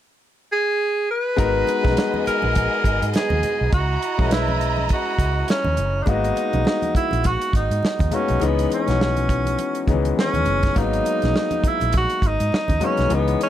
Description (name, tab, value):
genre	lush 1970s-style soul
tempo	102 BPM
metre	4/4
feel	swing 58% on 16ths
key	G# minor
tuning	A4 = 440 Hz
part	clear tenor saxophone	melody	0.5-13.5 s	B3 to B4	-22 LUFS	right 2 dB	none
part	warm symphonic violin section	second line	1.4-6.0 s	B3 to A#5	-28 LUFS	right 1 dB	none
part	clear concert grand piano	accompaniment	1.4-13.5 s	D#3 to D#5	-25 LUFS	left 6 dB	none
part	vintage muted fingered electric bass	bass	1.4-13.3 s	F#1 to G#2	-23 LUFS	equal	none
part	warm soul drum kit	drums	1.4-13.5 s	hi-hat, kick drum, snare drum	-23 LUFS	right 1 dB	none
part	congas	percussion	1.4-13.1 s	none	-32 LUFS	right 2 dB	none
room	light reverb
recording	none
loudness	-18 LUFS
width	side -11 dB against mid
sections	0.0-1.4 A section; 1.4-6.1 B section; 6.1-13.5 C section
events	none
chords	0.0 N.C.; 1.4 G#m7; 3.7 C#m9; 6.1 G#m7; 8.4 C#m9; 10.8 G#m7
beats	0.22 0.80 | 1.39 1.97 2.56 3.14 | 3.73 4.31 4.90 5.49 | 6.07 6.66 7.24 7.83 | 8.42 9.00 9.59 10.18 | 10.76 11.35 11.94 12.52 | 13.11